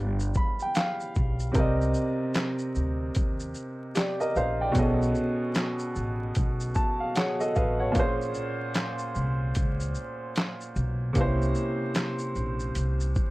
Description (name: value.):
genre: lo-fi hip hop.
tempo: 75 BPM.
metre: 4/4.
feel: swing 62% on 16ths.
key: unclear.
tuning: A4 = 439 Hz.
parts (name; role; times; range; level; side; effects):
clear upright piano; accompaniment; 0.0-13.3 s; Bb2 to B5; -28 LUFS; right 1 dB; cassette tape, low-pass filter.
upright bass; bass; 0.0-13.1 s; G1 to Eb2; -29 LUFS; equal; none.
lo-fi sampler-style drum kit; drums; 0.2-13.3 s; handclaps, hi-hat, kick drum, shaker, snare drum; -28 LUFS; equal; overdrive.
room: light reverb.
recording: vinyl crackle.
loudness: -25 LUFS.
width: side -20 dB against mid.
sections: 0.0-13.3 A section.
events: upright piano fill 0.0-1.6, 6.4-8.0.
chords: 0.0 G7; 1.6 Cm7; 4.8 B13; 8.0 Bbm7; 11.2 C7b9.